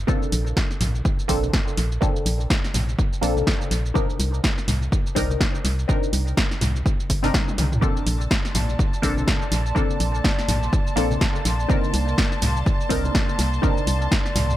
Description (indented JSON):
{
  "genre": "deep house",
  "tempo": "124 BPM",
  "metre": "4/4",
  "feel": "swing 58% on 16ths",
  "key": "C dorian",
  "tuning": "A4 = 440 Hz",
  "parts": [
    { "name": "organ-like FM bass", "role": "bass", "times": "0.0-14.6 s", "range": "G1 to C2", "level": "-23 LUFS", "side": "equal", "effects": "sidechain pumping" },
    { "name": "filtered dub chord stab", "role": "stabs", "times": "0.1-14.6 s", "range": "Bb3 to Bb4", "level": "-28 LUFS", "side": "left 1 dB", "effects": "phaser, sidechain pumping, dub echo" },
    { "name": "electronic kick drum", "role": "drums", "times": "0.1-14.2 s", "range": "none", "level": "-22 LUFS", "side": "equal", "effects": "none" },
    { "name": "punchy analog drum machine", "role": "drums", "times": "0.1-14.6 s", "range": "hi-hat, shaker, snare drum, toms", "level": "-27 LUFS", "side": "equal", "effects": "tape echo" },
    { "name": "congas", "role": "percussion", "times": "0.1-14.6 s", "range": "none", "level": "-32 LUFS", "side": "left 1 dB", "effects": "none" },
    { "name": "hollow soft pad", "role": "sustained chords", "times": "7.8-14.6 s", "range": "Bb3 to C6", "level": "-30 LUFS", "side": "equal", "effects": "chorus, sidechain pumping" },
    { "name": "rich studio violin section", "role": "texture", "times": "7.8-14.6 s", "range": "A5", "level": "-34 LUFS", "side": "equal", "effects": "sidechain pumping" }
  ],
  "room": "light reverb, digital ambience",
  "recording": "echo-heavy mix",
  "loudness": "-19 LUFS",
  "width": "side -14 dB against mid",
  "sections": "0.0-14.6 A section",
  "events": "drum fill 7.3-7.8",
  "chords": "0.1 Bbmaj9; 4.0 Cm9; 7.8 Bbmaj9; 11.7 Cm9",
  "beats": "| 0.08 0.57 1.05 1.53 | 2.02 2.50 2.99 3.47 | 3.95 4.44 4.92 5.41 | 5.89 6.37 6.86 7.34 | 7.83 8.31 8.79 9.28 | 9.76 10.24 10.73 11.21 | 11.70 12.18 12.66 13.15 | 13.63 14.12"
}